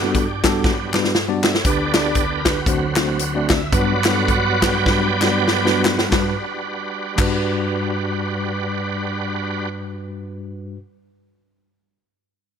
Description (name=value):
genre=uptempo gospel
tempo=90-120 BPM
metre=4/4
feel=swing 59% on 8ths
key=G major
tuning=A4 = 442 Hz
part: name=tine electric piano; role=accompaniment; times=0.0-10.8 s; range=D2 to D5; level=-22 LUFS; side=left 1 dB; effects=medium stereo tremolo
part: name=bright tonewheel organ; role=sustained chords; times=0.0-9.7 s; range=G2 to G5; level=-22 LUFS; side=right 3 dB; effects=slow rotary speaker, overdrive, chorus vibrato
part: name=natural country drum kit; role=drums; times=0.1-7.3 s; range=crash cymbal, hi-hat, kick drum, snare drum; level=-20 LUFS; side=equal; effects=none
part: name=group handclap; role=percussion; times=0.4-7.3 s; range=none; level=-27 LUFS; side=left 5 dB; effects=none
room=moderate plate reverb, RT60 2.0 s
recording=bright 1980s-style digital production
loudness=-17 LUFS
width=side -7 dB against mid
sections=0.0-1.7 A section; 1.7-6.1 B section; 6.1-11.5 C section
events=tonewheel organ solo 0.0-1.7, 1.7-6.1; drum fill 0.6-1.7, 4.9-6.1; slowing down 1.7-6.1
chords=0.0 Gmaj7; 1.7 G/D; 2.7 D7; 3.7 Gmaj7